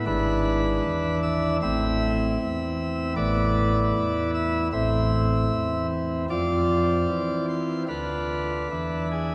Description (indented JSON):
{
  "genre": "classical, chorale-style piece for pipe organ",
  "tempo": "77 BPM",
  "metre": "4/4",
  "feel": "rubato",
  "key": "A minor",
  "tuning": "A4 = 436 Hz",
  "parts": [
    { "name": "chamber organ, principal chorus", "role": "solo", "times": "0.0-9.3 s", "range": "G#1 to E5", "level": "-25 LUFS", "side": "equal", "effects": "none" }
  ],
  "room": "wet church reverb, RT60 3.5 s",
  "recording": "none",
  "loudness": "-25 LUFS",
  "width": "mono",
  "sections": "0.0-9.3 A section",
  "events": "none",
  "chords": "0.1 E7/G#; 1.6 Am; 3.2 E5/A; 4.7 Am; 6.3 F5; 7.9 Bdim/D; 8.7 E7"
}